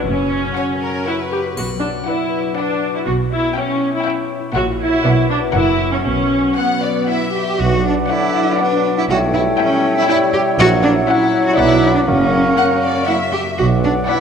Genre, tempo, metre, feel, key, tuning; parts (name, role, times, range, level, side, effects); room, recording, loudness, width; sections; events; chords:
cinematic, playful, whimsical film cue; 120 BPM; 3/4; straight; B minor; A4 = 439 Hz
concert harp; arpeggios; 0.0-14.2 s; F#2 to E5; -23 LUFS; left 7 dB
rich chamber viola section; accompaniment; 0.1-14.2 s; A#3 to G4; -20 LUFS; equal
rich chamber cello section; bass; 0.1-14.2 s; F#2 to G4; -19 LUFS; right 2 dB
rich chamber double bass section; bass; 0.1-14.0 s; F#1 to B1; -22 LUFS; right 4 dB
rich symphonic violin section; melody; 0.6-14.2 s; F#5 to G5; -26 LUFS; left 4 dB
rich chamber violin section; second line; 0.6-14.2 s; A#4 to F#5; -26 LUFS; left 3 dB
triangle; percussion; 1.6-2.5 s; -34 LUFS; left 5 dB
mellow cor anglais; second line; 7.6-14.2 s; C#5 to E5; -25 LUFS; right 3 dB
mellow hollow concert flute; second line; 7.6-14.2 s; F#5 to G5; -24 LUFS; equal
warm clarinet; second line; 7.6-14.2 s; A#4 to C#5; -25 LUFS; left 2 dB
mellow French horn section; sustained chords; 7.6-14.2 s; F#3 to E4; -24 LUFS; left 3 dB
clear tuba; bass; 7.6-14.0 s; F#1 to B1; -23 LUFS; right 3 dB
mellow bassoon; accompaniment; 8.1-14.2 s; D3 to B3; -22 LUFS; right 1 dB
wet concert hall reverb, RT60 2.3 s; -14 LUFS; side -7 dB against mid
0.0-7.6 A section; 7.6-14.2 A section
0.1 F#; 1.6 Bm; 3.1 C#m7b5/B; 4.6 F#7/A#; 5.0 Bm; 5.5 F#7; 6.0 Bm; 9.1 C#m7b5/B; 10.6 F#7/A#; 11.6 Bm; 12.1 F#; 13.6 Bm